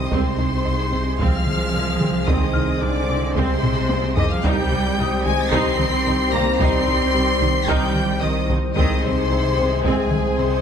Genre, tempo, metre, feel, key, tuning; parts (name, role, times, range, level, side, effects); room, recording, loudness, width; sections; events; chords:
cinematic, hybrid orchestral and electronic film score; 111 BPM; 4/4; straight; A4 = 440 Hz
dark symphonic violin section; melody; 0.0-10.6 s; Ab5 to C7; -28 LUFS; left 2 dB
rich symphonic violin section; second line; 0.0-10.6 s; Ab4 to C6; -27 LUFS; left 4 dB
rich studio viola section; accompaniment; 0.0-10.6 s; C4 to Ab4; -28 LUFS; right 2 dB
evolving wavetable pad; sustained chords; 0.0-10.6 s; C3 to C5; -30 LUFS; right 2 dB
warm French horn section; sustained chords; 0.0-10.6 s; C4 to C5; -28 LUFS; left 7 dB
warm trombone section; sustained chords; 0.0-10.6 s; C3 to Ab3; -30 LUFS; right 2 dB
rich symphonic cello section; bass; 0.0-10.6 s; Ab2 to C4; -25 LUFS; right 3 dB
saturated sub bass; bass; 0.0-10.6 s; C2; -26 LUFS; equal
felt-muted upright piano; texture; 0.0-10.6 s; C5 to F6; -34 LUFS; left 3 dB; tape echo
soft round pluck; arpeggios; 0.1-10.6 s; C3 to Ab4; -31 LUFS; right 1 dB
rich symphonic double bass section; bass; 0.1-10.5 s; C2; -28 LUFS; right 2 dB
taiko ensemble; drums; 0.1-10.4 s; -25 LUFS; equal
moderate scoring stage reverb, RT60 1.4 s; -17 LUFS; side -8 dB against mid
0.0-10.6 A section
drum fill 3.6-4.4
0.1 Ab/C; 4.4 Cm; 8.8 Ab/C